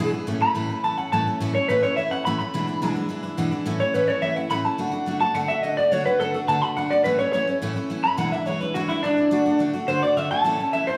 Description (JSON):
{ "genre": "rock", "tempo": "212 BPM", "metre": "4/4", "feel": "straight", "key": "A major", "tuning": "A4 = 442 Hz", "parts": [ { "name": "electric guitar through a small old amp", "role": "melody", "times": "0.0-11.0 s", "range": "D4 to B5", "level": "-24 LUFS", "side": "equal", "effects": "none" }, { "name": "picked steel-string acoustic guitar", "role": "accompaniment", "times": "0.0-11.0 s", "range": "E2 to F#4", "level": "-28 LUFS", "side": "equal", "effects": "none" } ], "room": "wet large studio reverb, RT60 1.3 s", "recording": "band playing live in one room", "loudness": "-23 LUFS", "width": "mono", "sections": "0.0-4.8 A section; 4.8-11.0 B section", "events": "none", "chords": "0.3 A; 2.5 E7; 3.7 A; 4.8 D; 7.1 A; 8.2 E7; 9.3 D; 10.4 A" }